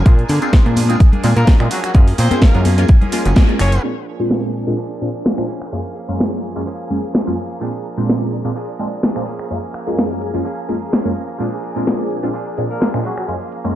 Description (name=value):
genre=filtered disco house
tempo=127 BPM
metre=4/4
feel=swing 54% on 16ths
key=Bb mixolydian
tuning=A4 = 440 Hz
part: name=phased string machine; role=sustained chords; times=0.0-13.8 s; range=D4 to Bb5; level=-29 LUFS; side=equal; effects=ensemble chorus, phaser, sidechain pumping, low-pass filter
part: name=direct-recorded clean electric guitar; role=riff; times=0.0-13.8 s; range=F3 to Ab4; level=-29 LUFS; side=right 4 dB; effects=sidechain pumping, low-pass filter
part: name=plucky analog bass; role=bass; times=0.0-3.8 s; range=Gb1 to D3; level=-14 LUFS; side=equal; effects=sidechain pumping, low-pass filter
part: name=funky polysynth comp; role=accompaniment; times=0.1-13.8 s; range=Gb2 to F4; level=-22 LUFS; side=equal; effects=chorus, phaser, sidechain pumping, low-pass filter
part: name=electronic kick drum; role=drums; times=0.1-3.5 s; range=none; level=-10 LUFS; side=equal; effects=none
part: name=house drum kit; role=drums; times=0.1-13.7 s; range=finger snaps, hi-hat, snare drum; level=-20 LUFS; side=equal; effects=sidechain pumping on hats, low-pass filter on hats, low-pass filter on snare, low-pass filter on room
part: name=tambourine and congas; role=percussion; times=0.1-3.8 s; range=none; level=-24 LUFS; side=left 4 dB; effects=sidechain pumping on perc, low-pass filter on perc
part: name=brilliant horn section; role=melody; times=1.4-3.8, 12.7-13.2 s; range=Gb3 to Db5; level=-24 LUFS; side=left 1 dB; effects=sidechain pumping, low-pass filter, ping-pong delay
room=light reverb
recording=dark, warm production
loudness=-14 LUFS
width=side -12 dB against mid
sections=0.0-3.8 A section; 3.8-13.8 B section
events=band accent 3.4; filter sweep 3.8-13.8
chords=0.1 Bb7; 1.7 Gbmaj9; 3.8 Bb7; 5.5 Gbmaj9; 7.6 Bb7; 9.3 Gbmaj9; 11.4 Bb7; 13.1 Gbmaj9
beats=| 0.06 0.53 1.00 1.48 | 1.95 2.42 2.89 3.37 | 3.84 4.31 4.78 5.25 | 5.73 6.20 6.67 7.14 | 7.62 8.09 8.56 9.03 | 9.51 9.98 10.45 10.92 | 11.40 11.87 12.34 12.81 | 13.29